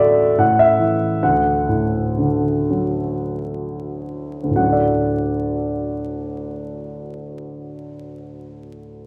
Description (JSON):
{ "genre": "classical, lyrical solo piano", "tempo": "42-77 BPM", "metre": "3/4", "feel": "rubato", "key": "D major", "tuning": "A4 = 440 Hz", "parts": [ { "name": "warm concert grand piano", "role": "solo", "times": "0.0-9.1 s", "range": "D2 to F#5", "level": "-20 LUFS", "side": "equal", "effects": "none" } ], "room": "wet recital hall reverb, RT60 1.5 s", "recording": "vinyl crackle", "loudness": "-19 LUFS", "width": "mono", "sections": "0.0-4.6 A section; 4.6-8.6 B section", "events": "slowing down 0.0-4.6", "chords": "0.4 A5; 1.2 D", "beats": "0.37 | 1.23 2.17 3.27 | 4.58 5.94 7.25" }